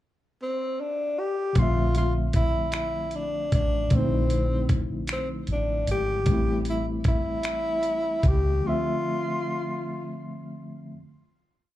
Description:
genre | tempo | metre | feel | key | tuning
slow six-eight R&B | 51 BPM (dotted quarters) | 6/8 | straight | unclear | A4 = 440 Hz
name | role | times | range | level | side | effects
breathy tenor saxophone | melody | 0.4-10.2 s | C4 to G4 | -28 LUFS | left 1 dB | slapback echo
bright reed electric piano | accompaniment | 1.5-11.0 s | D3 to E5 | -30 LUFS | left 1 dB | fast tremolo, slapback echo
vintage muted fingered electric bass | bass | 1.6-8.6 s | G#1 to C#2 | -27 LUFS | equal | none
dusty soul sampler-style drum kit | drums | 1.6-8.4 s | finger snaps, hi-hat, kick drum | -25 LUFS | equal | none
room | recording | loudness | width
light reverb | live gig heard through the venue's PA, club reverb | -23 LUFS | side -14 dB against mid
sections
0.0-1.6 pickup bar; 1.6-11.0 verse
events
none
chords
0.0 N.C.; 1.6 Bbmaj9#11; 6.3 Am7; 8.6 Dm9

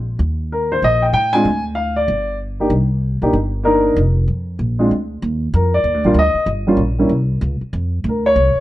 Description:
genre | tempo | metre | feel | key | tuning
jazz piano trio | 191 BPM | 4/4 | swing 63% on 8ths | C minor, Eb major from 5.2 s | A4 = 440 Hz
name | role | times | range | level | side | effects
upright bass | bass | 0.0-8.6 s | F1 to A2 | -18 LUFS | equal | none
warm grand piano | melody | 0.5-8.6 s | G3 to Ab5 | -16 LUFS | equal | plate reverb
room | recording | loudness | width
light reverb | dark, warm production, nothing above 11.0 kHz | -15 LUFS | side -15 dB against mid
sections
0.0-5.2 A section; 5.2-8.6 B section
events
grand piano solo 5.2-8.6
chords
0.2 Eb5; 1.5 Ddim; 2.1 G5; 2.7 Cm7; 4.0 N.C.; 4.6 Bb; 5.2 Ebmaj7(no3); 6.5 Gdim; 7.1 N.C.; 7.7 F5

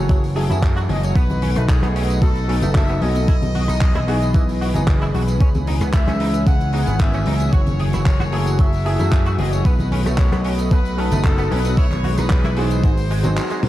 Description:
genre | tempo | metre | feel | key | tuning
nu-disco, nu disco | 113 BPM | 4/4 | straight | unclear | A4 = 441 Hz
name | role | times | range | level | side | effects
bright trumpet section | melody | 0.0-13.6 s | G#4 to F#5 | -28 LUFS | left 2 dB | tape echo
clear grand piano | accompaniment | 0.0-13.7 s | E3 to D#5 | -27 LUFS | equal | analog chorus, sidechain pumping, analog delay
lush unison pad | sustained chords | 0.0-13.7 s | E3 to D#5 | -28 LUFS | equal | chorus, sidechain pumping
vintage slap bass | bass | 0.0-13.4 s | F#1 to F#2 | -20 LUFS | equal | none
direct-recorded clean electric guitar | riff | 0.1-13.7 s | G#2 to G#4 | -31 LUFS | right 2 dB | ensemble chorus
damped 70s drum kit | drums | 0.1-13.7 s | handclaps, hi-hat, rim click, tambourine, toms | -29 LUFS | left 1 dB | none
electronic kick drum | drums | 0.1-12.9 s | none | -16 LUFS | equal | overdrive
cabasa, congas and bongos | percussion | 0.1-13.7 s | none | -28 LUFS | left 1 dB | none
room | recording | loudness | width
light reverb, studio ambience | none | -16 LUFS | side -14 dB against mid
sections
0.0-13.7 A section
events
none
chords
0.0 F#m9; 1.2 B7; 3.3 Emaj7/B; 5.4 C#m7; 7.5 F#m9; 9.7 B7; 11.8 Emaj7/B; 12.8 G#7

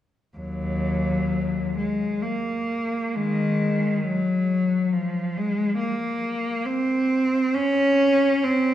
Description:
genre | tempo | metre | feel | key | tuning
classical, free, expressive piece for unaccompanied cello | 67 BPM | 3/4 | rubato | Eb dorian | A4 = 440 Hz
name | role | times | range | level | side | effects
clear cello | solo | 0.4-8.7 s | Eb2 to Db4 | -21 LUFS | equal | none
room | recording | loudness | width
wet church reverb, RT60 2.9 s | dark, warm production | -21 LUFS | side -12 dB against mid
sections
0.4-8.7 A section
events
none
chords
none

